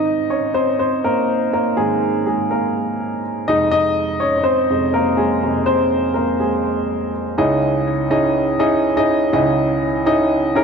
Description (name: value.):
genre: pop.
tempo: 123 BPM.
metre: 4/4.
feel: straight.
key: unclear.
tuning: A4 = 438 Hz.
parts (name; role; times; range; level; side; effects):
warm upright piano; solo; 0.0-10.6 s; Db2 to Eb5; -16 LUFS; equal; ping-pong delay.
room: wet concert hall reverb, RT60 2.4 s.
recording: dark, warm production.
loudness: -16 LUFS.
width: side -6 dB against mid.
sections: 0.0-7.4 A section; 7.4-10.6 B section.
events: upright piano solo 0.0-7.4.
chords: 0.0 Abadd9; 3.5 Fm; 7.4 Dbmadd9.